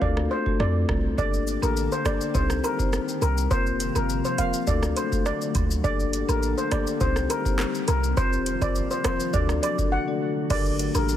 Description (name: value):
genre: dancehall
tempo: 103 BPM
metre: 4/4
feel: straight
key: G minor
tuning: A4 = 441 Hz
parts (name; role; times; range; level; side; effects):
- steel pan; melody; 0.0-11.1 s; Bb4 to F#5; -28 LUFS; equal; tape echo
- marimba with soft mallets; accompaniment; 0.0-11.1 s; A3 to D5; -28 LUFS; left 5 dB; none
- clean 808-style bass; bass; 0.0-11.2 s; F1 to F2; -26 LUFS; right 1 dB; none
- booming analog drum machine; drums; 0.0-11.2 s; crash cymbal, handclaps, hi-hat, kick drum, rim click, shaker; -28 LUFS; right 1 dB; overdrive
- glassy FM pad; sustained chords; 1.5-11.2 s; C3 to A4; -33 LUFS; left 1 dB; ensemble chorus, built-in reverb, sidechain pumping
- cabasa and woodblock; percussion; 1.5-11.1 s; none; -39 LUFS; right 8 dB; none
room: light reverb, digital ambience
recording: heavily compressed radio sound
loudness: -22 LUFS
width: side -11 dB against mid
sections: 0.0-1.2 A section; 1.2-10.5 B section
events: break 9.9-10.5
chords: 0.0 D; 0.6 F; 1.2 Gmadd9; 2.3 Cm; 3.5 Fsus4; 4.7 D; 5.8 Gmadd9; 7.0 Cm; 8.2 Fsus4; 9.3 D; 10.5 Gmadd9